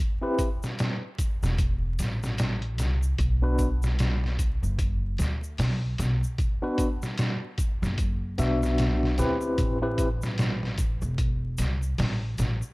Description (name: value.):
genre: trip hop.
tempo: 75 BPM.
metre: 4/4.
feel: swing 60% on 16ths.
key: A dorian.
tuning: A4 = 444 Hz.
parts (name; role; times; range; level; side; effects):
overdriven tine electric piano; accompaniment; 0.2-10.1 s; B3 to E5; -28 LUFS; left 1 dB; tremolo, tape echo.
trip hop sampler-style drum kit; drums; 0.4-12.6 s; hi-hat, kick drum, snare drum; -28 LUFS; equal; none.
egg shaker; percussion; 0.4-12.7 s; none; -44 LUFS; left 2 dB; none.
upright bass; bass; 1.4-12.6 s; E1 to D2; -27 LUFS; equal; none.
room: little or no reverb.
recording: dark, warm production, vinyl crackle.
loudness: -24 LUFS.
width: side -23 dB against mid.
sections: 0.0-12.7 A section.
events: none.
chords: 0.0 Am7; 3.2 Bm; 9.6 Am7.